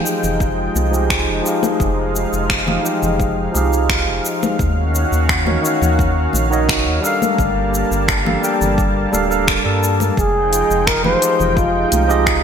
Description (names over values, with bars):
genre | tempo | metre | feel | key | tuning
sunset chillout | 86 BPM | 4/4 | straight | unclear | A4 = 440 Hz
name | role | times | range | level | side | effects
barky tine electric piano | accompaniment | 0.0-12.4 s | Eb3 to A5 | -20 LUFS | moving between left 5 dB and right 6 dB | auto-pan, low-pass filter, digital delay
lush unison pad | sustained chords | 0.0-12.4 s | Eb3 to A5 | -22 LUFS | right 1 dB | chorus
deep house drum kit | drums | 0.1-12.4 s | finger snaps, hi-hat, shaker | -21 LUFS | equal | gated reverb
round analog bass | bass | 0.2-12.4 s | D1 to G2 | -20 LUFS | equal | none
congas | percussion | 0.2-12.1 s | none | -26 LUFS | left 4 dB | none
electronic kick drum | drums | 0.4-12.4 s | none | -22 LUFS | equal | none
trumpet with bucket mute | melody | 10.2-12.4 s | F4 to C5 | -17 LUFS | right 1 dB | digital delay
room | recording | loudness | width
moderate lush hall reverb, RT60 2.0 s | bright 1980s-style digital production | -14 LUFS | side -7 dB against mid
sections
0.0-12.4 A section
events
filter sweep on tine electric piano 0.0-12.4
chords
0.0 Fm9; 4.6 Ebm9; 7.0 Gm9; 10.2 Fm9